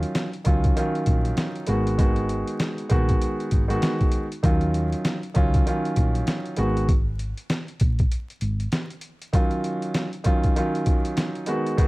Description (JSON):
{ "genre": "hip hop, boom-bap hip-hop", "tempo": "98 BPM", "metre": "4/4", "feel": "swing 61% on 16ths", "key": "Eb minor", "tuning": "A4 = 440 Hz", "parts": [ { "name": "dark concert grand piano", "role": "accompaniment", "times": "0.0-11.9 s", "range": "Eb3 to Gb4", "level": "-25 LUFS", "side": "right 1 dB", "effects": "high-pass filter, low-pass filter" }, { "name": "hollow-body short-scale fingered electric bass", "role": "bass", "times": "0.0-8.7 s", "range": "Ab1 to Eb2", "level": "-25 LUFS", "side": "equal", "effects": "tube saturation" }, { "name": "boom bap sampler-style drum kit", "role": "drums", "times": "0.0-11.9 s", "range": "hi-hat, kick drum, snare drum", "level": "-22 LUFS", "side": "equal", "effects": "vintage 12-bit sampler grit" } ], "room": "digital ambience", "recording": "dry, gritty hardware recording, vinyl crackle", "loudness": "-21 LUFS", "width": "side -21 dB against mid", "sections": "0.0-11.9 A section", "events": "break 6.9-9.3", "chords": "0.0 Ebm9; 1.7 Abm7; 4.4 Ebm9; 6.6 N.C.; 9.3 Ebm9", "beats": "0.15 0.76 1.38 | 1.99 2.60 3.21 3.83 | 4.44 5.05 5.66 6.28 | 6.89 7.50 8.11 8.72 | 9.34 9.95 10.56 11.17 | 11.79" }